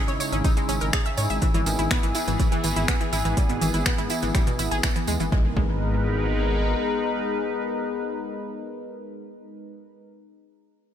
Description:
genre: melodic techno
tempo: 123 BPM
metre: 4/4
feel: straight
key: G# minor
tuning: A4 = 438 Hz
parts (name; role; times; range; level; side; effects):
- sweeping resonant pad; sustained chords; 0.0-10.0 s; C#3 to B4; -31 LUFS; right 1 dB; chorus, vintage 12-bit sampler grit, sidechain pumping
- warbly tape-like pad; texture; 0.0-10.0 s; B3 to E6; -30 LUFS; left 4 dB; chorus, built-in reverb, sidechain pumping
- wide unison pluck; arpeggios; 0.1-5.7 s; B2 to E5; -28 LUFS; right 1 dB; sidechain pumping, ping-pong delay
- swelling detuned saw bass; bass; 0.1-6.7 s; G#1 to G#2; -27 LUFS; equal; sidechain pumping
- techno drum kit; drums; 0.1-5.3 s; finger snaps, hi-hat; -30 LUFS; equal; small room ambience
- tambourine; percussion; 0.1-5.3 s; none; -35 LUFS; right 6 dB; none
- electronic kick drum; drums; 0.4-5.7 s; none; -24 LUFS; equal; small room ambience
- impact; sound effects; 5.3-10.0 s; none; -34 LUFS; equal; none
room: light reverb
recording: bright 1980s-style digital production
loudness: -21 LUFS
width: side -9 dB against mid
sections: 0.0-5.3 A section; 5.3-9.2 B section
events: drop 0.0-5.3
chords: 0.0 C#m/G#; 1.4 E/G#; 5.3 G#madd9

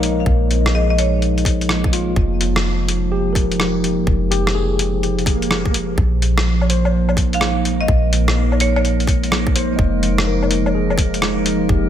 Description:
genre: future garage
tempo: 126 BPM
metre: 4/4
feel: swing 65% on 16ths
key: unclear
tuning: A4 = 443 Hz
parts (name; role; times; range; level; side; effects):
- tine electric piano; accompaniment; 0.0-11.9 s; F4 to Eb5; -26 LUFS; left 4 dB; medium stereo tremolo, sidechain pumping, ping-pong delay
- warbly tape-like pad; sustained chords; 0.0-11.9 s; F3 to Eb4; -21 LUFS; right 2 dB; chorus, built-in reverb, vintage 12-bit sampler grit, sidechain pumping
- soft 808-style bass; bass; 0.0-11.9 s; F1 to Bb1; -20 LUFS; equal; tube saturation, sidechain pumping
- lo-fi sampler-style drum kit; drums; 0.0-11.6 s; hi-hat, rim click, woodblock; -22 LUFS; left 1 dB; overdrive
- electronic kick drum; drums; 0.3-11.8 s; none; -18 LUFS; equal; none
- marimba with hard mallets; melody; 0.8-1.4, 7.3-8.8 s; Db5 to F5; -25 LUFS; right 1 dB; vintage 12-bit sampler grit, ping-pong delay
- swell; sound effects; 5.2-6.0 s; none; -29 LUFS; right 7 dB; none
- drifting glass-harmonics texture; texture; 6.8-11.9 s; Bb4; -31 LUFS; equal; chorus, built-in reverb
room: moderate plate reverb, RT60 1.8 s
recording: dreamy mix soaked in reverb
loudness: -15 LUFS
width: side -10 dB against mid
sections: 0.0-11.9 A section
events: swell 5.2-6.0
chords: 0.0 Bbm7; 2.2 Fm7; 6.0 Bb5; 9.8 Fm7

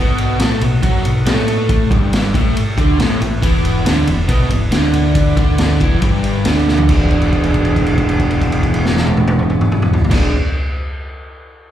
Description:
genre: blues rock power trio and southern rock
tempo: 138 BPM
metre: 4/4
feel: straight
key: E mixolydian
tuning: A4 = 443 Hz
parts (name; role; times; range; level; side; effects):
- overdriven tonewheel organ; sustained chords; 0.0-10.3 s; D#4 to G#5; -30 LUFS; right 5 dB; slow rotary speaker
- raw garage guitar; riff; 0.0-10.3 s; E2 to A4; -17 LUFS; equal; overdrive, slapback echo
- growling fingered electric bass; bass; 0.0-10.3 s; E1 to A2; -19 LUFS; equal; overdrive
- raw garage drum kit; drums; 0.2-10.2 s; crash cymbal, kick drum, ride cymbal, snare drum, toms; -16 LUFS; equal; none
room: little or no reverb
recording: live gig heard through the venue's PA, club reverb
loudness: -12 LUFS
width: side -11 dB against mid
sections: 0.0-6.9 A section; 6.9-10.4 B section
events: drum fill 6.7; held note 6.9-10.1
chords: 0.0 B7; 1.7 A7; 3.4 E7; 6.9 E9

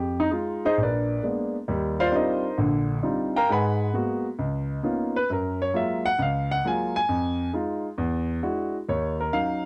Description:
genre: solo jazz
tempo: 133 BPM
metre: 4/4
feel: swing 68% on 8ths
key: Eb minor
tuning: A4 = 440 Hz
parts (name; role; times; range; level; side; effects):
- warm grand piano; solo; 0.0-9.7 s; Bb1 to Cb6; -26 LUFS; equal; none
room: little or no reverb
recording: dry, close 1970s-style studio recording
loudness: -26 LUFS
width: mono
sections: 0.0-8.9 A section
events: grand piano solo 0.0-8.9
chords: 0.0 Fm7; 0.8 Bb7b9; 1.7 Ebmaj13; 3.5 Abm9; 4.4 Db13; 5.3 Gbmaj9; 7.1 Fm7; 8.0 E9; 8.9 Ebm7

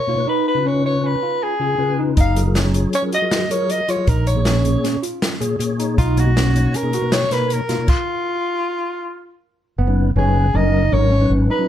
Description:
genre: progressive instrumental, band music in an uneven meter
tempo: 158 BPM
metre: 5/4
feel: straight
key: unclear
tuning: A4 = 440 Hz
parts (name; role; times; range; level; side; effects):
- dark soprano saxophone; melody; 0.0-11.7 s; E#4 to E#5; -21 LUFS; left 1 dB; none
- mellow tonewheel organ; accompaniment; 0.1-11.7 s; A#2 to C#5; -22 LUFS; left 3 dB; chorus vibrato, fast rotary speaker
- overdriven tine electric piano; arpeggios; 0.1-11.7 s; B3 to A#4; -24 LUFS; right 4 dB; phaser, digital delay
- mellow fretless electric bass; bass; 2.2-6.7, 9.8-11.5 s; F#1 to B1; -17 LUFS; equal; none
- open jazz drum kit; drums; 2.2-8.0 s; crash cymbal, hi-hat, kick drum, snare drum; -21 LUFS; equal; none
room: moderate studio reverb, RT60 0.8 s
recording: lossy compression artefacts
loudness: -16 LUFS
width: side -11 dB against mid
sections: 0.0-9.8 A section; 9.8-11.7 B section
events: stop 7.9-9.8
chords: 0.3 C#7; 2.2 F#maj9; 4.1 A#m7; 6.0 Bmaj9; 7.9 N.C.; 9.8 C#7sus4/F#

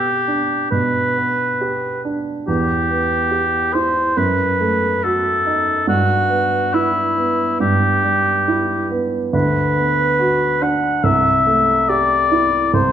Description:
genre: classical, romantic duo for oboe and grand piano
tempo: 70 BPM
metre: 4/4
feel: rubato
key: unclear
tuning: A4 = 439 Hz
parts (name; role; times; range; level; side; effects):
- warm oboe; melody; 0.0-12.9 s; E4 to F#5; -17 LUFS; left 2 dB; none
- warm grand piano; accompaniment; 0.0-12.9 s; C2 to G4; -19 LUFS; right 3 dB; none
room: wet recital hall reverb, RT60 1.5 s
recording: none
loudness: -15 LUFS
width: side -9 dB against mid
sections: 0.0-12.9 A section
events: none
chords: 0.0 G/B; 2.5 Em; 4.2 D#dim/F#; 5.9 Em/G; 9.3 Bm/D; 11.1 Am7/C

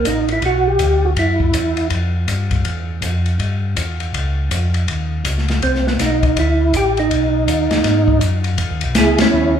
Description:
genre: soul jazz organ trio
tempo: 162 BPM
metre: 4/4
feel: swing 63% on 8ths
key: unclear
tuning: A4 = 439 Hz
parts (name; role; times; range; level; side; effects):
- percussive tonewheel organ; melody; 0.0-1.9, 5.6-9.6 s; B3 to G#4; -16 LUFS; right 2 dB; slow rotary speaker, chorus vibrato
- mellow tonewheel organ; bass; 0.0-9.6 s; A1 to G#2; -18 LUFS; equal; slow rotary speaker
- open jazz drum kit; drums; 0.1-9.3 s; hi-hat, kick drum, ride cymbal, snare drum; -21 LUFS; left 3 dB; none
room: moderate large studio reverb, RT60 1.2 s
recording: band playing live in one room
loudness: -15 LUFS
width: side -8 dB against mid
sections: 0.0-8.6 A section; 8.6-9.6 B section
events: band accent 9.2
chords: 0.0 A9sus4; 1.2 Esus2; 1.9 Fsus2; 2.7 Em; 4.1 Dbadd9; 5.6 Cmaj9; 7.1 B6; 8.6 E5

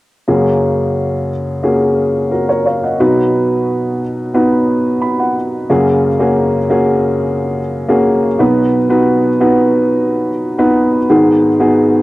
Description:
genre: pop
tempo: 89 BPM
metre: 4/4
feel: straight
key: F# major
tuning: A4 = 440 Hz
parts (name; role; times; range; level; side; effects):
- dark upright piano; solo; 0.3-12.0 s; F#2 to B5; -11 LUFS; equal; none
room: wet spring reverb, RT60 1.7 s, small room ambience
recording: home recording on cassette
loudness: -11 LUFS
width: side -18 dB against mid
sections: 0.3-5.7 A section; 5.7-12.0 B section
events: upright piano fill 4.7-5.7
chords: 0.3 F#add9; 3.0 B; 5.7 F#add9; 8.4 B; 11.1 G#m7

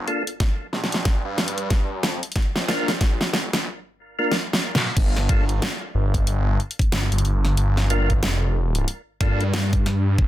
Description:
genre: glitch hop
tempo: 92 BPM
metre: 4/4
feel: swing 60% on 16ths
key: G minor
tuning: A4 = 440 Hz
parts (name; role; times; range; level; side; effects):
- phased detuned saw bass; bass; 0.0-10.3 s; F1 to G2; -22 LUFS; equal; phaser, tube saturation, high-pass filter
- percussive tonewheel organ; stabs; 0.1-9.4 s; Bb3 to Bb4; -27 LUFS; equal; overdrive, chorus vibrato, fast rotary speaker, sidechain pumping, dub echo
- dubstep drum kit; drums; 0.1-10.0 s; crash cymbal, hi-hat, snare drum; -24 LUFS; equal; soft clipping on snare
- electronic kick drum; drums; 0.4-10.3 s; none; -20 LUFS; equal; none
room: light reverb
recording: dense, heavily limited modern master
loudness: -20 LUFS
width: side -14 dB against mid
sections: 0.0-5.0 A section; 5.0-10.3 B section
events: build-up 0.0-5.0; drum fill 0.0-3.7, 4.3-5.0; drop 5.0-10.3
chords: 0.0 Gm7

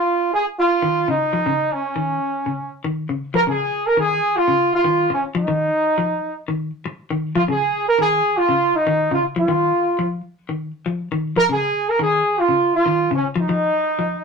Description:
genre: afrobeat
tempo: 120 BPM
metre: 4/4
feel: straight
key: unclear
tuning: A4 = 439 Hz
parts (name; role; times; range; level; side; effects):
- warm horn section; melody; 0.0-14.2 s; Db4 to Bb4; -17 LUFS; right 1 dB; none
- clean electric guitar; arpeggios; 0.8-14.2 s; Db3 to F3; -24 LUFS; left 4 dB; none
room: moderate studio reverb, RT60 0.5 s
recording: rough rehearsal-room recording, tube saturation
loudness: -17 LUFS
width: side -5 dB against mid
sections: 0.0-3.4 A section; 3.4-14.2 B section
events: none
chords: 0.0 Dbadd9; 5.4 Ebsus2; 7.4 Dbadd9; 9.4 Ebsus2; 11.4 Dbadd9; 13.4 Ebsus2

